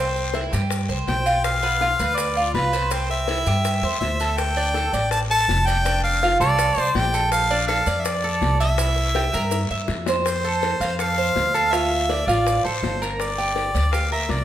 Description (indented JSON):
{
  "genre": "latin, Cuban son and guajira",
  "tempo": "163 BPM",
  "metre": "4/4",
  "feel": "straight",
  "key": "F major",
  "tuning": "A4 = 440 Hz",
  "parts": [
    { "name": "warm harmonica", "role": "melody", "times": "0.0-14.4 s", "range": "B4 to A5", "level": "-23 LUFS", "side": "left 1 dB", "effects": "none" },
    { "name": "Cuban tres", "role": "arpeggios", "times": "0.0-14.4 s", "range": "B3 to F5", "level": "-24 LUFS", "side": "right 2 dB", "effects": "none" },
    { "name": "upright bass", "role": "bass", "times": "0.0-14.4 s", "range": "F1 to G2", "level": "-24 LUFS", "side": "equal", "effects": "none" },
    { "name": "bongos", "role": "percussion", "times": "0.2-14.4 s", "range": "none", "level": "-31 LUFS", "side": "left 6 dB", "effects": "none" },
    { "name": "maracas", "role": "percussion", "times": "0.2-14.4 s", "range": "none", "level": "-36 LUFS", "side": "right 5 dB", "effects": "none" },
    { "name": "guiro", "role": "percussion", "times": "0.3-14.4 s", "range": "none", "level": "-34 LUFS", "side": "left 5 dB", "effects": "none" }
  ],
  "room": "moderate recital hall reverb, RT60 1.4 s",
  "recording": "minimal, uncompressed stereo recording",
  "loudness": "-19 LUFS",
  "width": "side -11 dB against mid",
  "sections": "0.0-10.3 A section; 10.3-14.4 B section",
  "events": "drum fill 9.5-10.3",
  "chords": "0.0 C; 1.4 Bdim; 2.9 C; 4.4 Dm; 5.9 F6; 7.3 Bbmaj7; 8.8 C7; 10.3 F; 11.7 Dmadd9; 13.2 Gm"
}